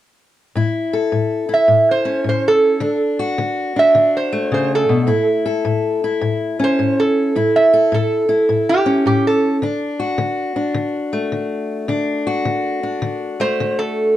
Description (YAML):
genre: acoustic country blues, solo or duo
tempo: 106 BPM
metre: 4/4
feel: swing 65% on 8ths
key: A major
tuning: A4 = 439 Hz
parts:
  - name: fingerpicked steel-string acoustic guitar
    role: accompaniment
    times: 0.6-14.2 s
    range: A2 to A4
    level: -18 LUFS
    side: left 3 dB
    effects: none
  - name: metal-body resonator slide guitar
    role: melody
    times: 1.5-9.6, 13.4-14.2 s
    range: G4 to E5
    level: -15 LUFS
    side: right 2 dB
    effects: none
room: light reverb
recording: dark, warm production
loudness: -15 LUFS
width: side -13 dB against mid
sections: 0.5-14.2 A section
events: resonator guitar played with a steel bar solo 0.5-14.2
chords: 0.5 A; 2.8 D; 5.1 A; 9.6 D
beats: | 0.55 1.11 1.68 2.25 | 2.82 3.38 3.95 4.52 | 5.09 5.65 6.22 6.79 | 7.36 7.92 8.49 9.05 | 9.62 10.19 10.76 11.32 | 11.89 12.46 13.02 13.59 | 14.15